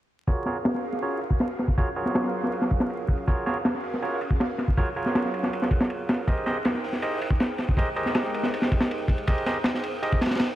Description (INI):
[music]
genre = drum and bass, jungle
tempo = 160 BPM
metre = 4/4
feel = straight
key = unclear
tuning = A4 = 443 Hz
[part]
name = airy breathy pad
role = sustained chords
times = 0.3-10.5 s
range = Gb3 to G5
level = -34 LUFS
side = right 1 dB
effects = chorus, vintage 12-bit sampler grit
[part]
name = barky tine electric piano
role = stabs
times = 0.3-10.2 s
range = F4 to Eb5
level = -30 LUFS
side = right 2 dB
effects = vintage 12-bit sampler grit, low-pass filter, dub echo
[part]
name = crunchy breakbeat drum kit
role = drums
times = 0.3-10.5 s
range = hi-hat, kick drum, ride cymbal, snare drum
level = -24 LUFS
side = equal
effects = low-pass filter on kick, low-pass filter on cymbals, low-pass filter on hats, low-pass filter on snare, low-pass filter on room
[sound]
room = light reverb, studio reverb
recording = vinyl crackle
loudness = -23 LUFS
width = side -14 dB against mid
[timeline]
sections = 0.3-10.6 A section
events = filter sweep on drum 0.3-10.6; filter sweep on tine electric piano 0.3-10.6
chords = 0.3 Gbmaj9; 6.3 Abmaj9